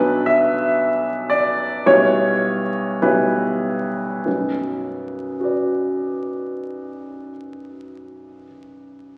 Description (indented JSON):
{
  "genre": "classical, romantic character piece for solo piano",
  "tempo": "46-59 BPM",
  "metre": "2/4",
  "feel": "rubato",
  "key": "B minor",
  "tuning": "A4 = 442 Hz",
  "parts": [
    { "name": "warm upright piano", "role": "solo", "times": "0.0-9.2 s", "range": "B1 to E5", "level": "-20 LUFS", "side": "equal", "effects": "none" }
  ],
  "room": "wet scoring stage reverb, RT60 1.6 s",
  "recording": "very old 78 rpm record, vinyl crackle",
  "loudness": "-20 LUFS",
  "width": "mono",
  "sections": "0.0-4.3 A section; 4.3-8.8 B section",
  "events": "slowing down 0.0-4.3",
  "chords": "0.0 Bm; 1.8 Em/B; 4.3 Bm",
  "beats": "0.78 | 1.85 3.01 | 4.25 5.38 | 6.53 7.68"
}